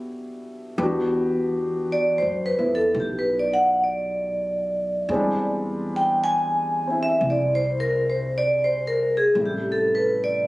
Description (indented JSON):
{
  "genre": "jazz ballad",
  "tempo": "56 BPM",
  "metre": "4/4",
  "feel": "swing 66% on 8ths",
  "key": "E minor",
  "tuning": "A4 = 440 Hz",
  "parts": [
    { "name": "warm grand piano", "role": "accompaniment", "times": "0.0-10.5 s", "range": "C3 to G4", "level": "-28 LUFS", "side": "left 1 dB", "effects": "none" },
    { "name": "upright bass", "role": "bass", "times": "0.0-10.5 s", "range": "A1 to B2", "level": "-30 LUFS", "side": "equal", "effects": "none" },
    { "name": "vibraphone with medium hard mallets", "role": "melody", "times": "1.9-10.4 s", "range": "G4 to G#5", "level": "-21 LUFS", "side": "equal", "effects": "none" }
  ],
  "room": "light reverb",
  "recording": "recorded on a phone in the room, club reverb, compression",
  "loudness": "-20 LUFS",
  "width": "side -19 dB against mid",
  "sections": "0.8-10.5 A section",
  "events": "vibraphone solo 0.8-10.5",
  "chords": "0.0 Em9; 5.1 E7alt; 9.4 Am9",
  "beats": "| 0.78 1.86 2.94 4.02 | 5.09 6.16 7.22 8.29 | 9.36 10.43"
}